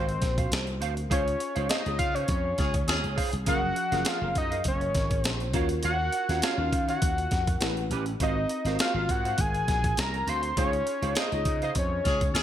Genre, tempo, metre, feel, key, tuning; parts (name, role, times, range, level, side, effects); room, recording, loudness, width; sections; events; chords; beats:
polished 1980s jazz-funk pop; 101 BPM; 4/4; swing 54% on 16ths; Db major; A4 = 441 Hz
fat analog lead; melody; 0.0-12.4 s; C5 to C6; -30 LUFS; left 1 dB; chorus
bell-like FM electric piano; accompaniment; 0.0-12.4 s; F3 to Db5; -35 LUFS; left 1 dB; lush chorus
mellow electric guitar; riff; 0.0-12.2 s; C#4 to F5; -36 LUFS; right 8 dB; analog chorus
slap bass; bass; 0.0-12.4 s; Gb1 to Eb3; -31 LUFS; equal
breakbeat sampler-style drum kit; drums; 0.1-12.4 s; hi-hat, kick drum, snare drum; -29 LUFS; equal; gated reverb
warm horn section; second line; 2.6-3.3, 12.0-12.4 s; Db4 to Ab4; -32 LUFS; left 2 dB
light reverb, digital ambience; bright 1980s-style digital production; -25 LUFS; side -10 dB against mid
0.0-12.4 A section
band accent 1.1-3.5, 10.6-12.4
0.0 Ab13; 1.1 Dbmaj7; 3.5 Gbmaj9; 5.5 Ebm9; 7.6 A9; 8.2 Ab13; 10.6 Dbmaj7
0.52 | 1.11 1.70 2.29 2.88 | 3.48 4.07 4.66 5.25 | 5.84 6.43 7.02 7.62 | 8.21 8.80 9.39 9.98 | 10.57 11.17 11.76 12.35